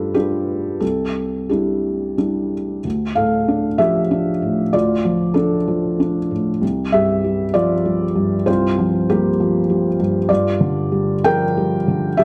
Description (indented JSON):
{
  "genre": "neoclassical minimalist piano",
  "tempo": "86-101 BPM",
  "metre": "3/4",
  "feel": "rubato",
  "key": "unclear",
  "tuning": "A4 = 439 Hz",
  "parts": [
    { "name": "felt-muted upright piano", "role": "solo", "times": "0.0-12.2 s", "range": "C2 to G5", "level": "-18 LUFS", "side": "equal", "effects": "none" }
  ],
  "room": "light reverb",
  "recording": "none",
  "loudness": "-19 LUFS",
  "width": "mono",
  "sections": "0.0-2.8 A section; 2.8-12.2 B section",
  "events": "none",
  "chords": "0.0 G7; 0.8 Cadd9; 2.8 Dm; 6.6 C7sus4; 10.3 Gm7",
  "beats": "0.14 | 0.81 1.50 2.18 | 2.85 3.49 4.12 | 4.74 5.36 6.00 | 6.62 7.24 7.86 | 8.48 9.09 9.69 | 10.29 10.92 11.57 | 12.19"
}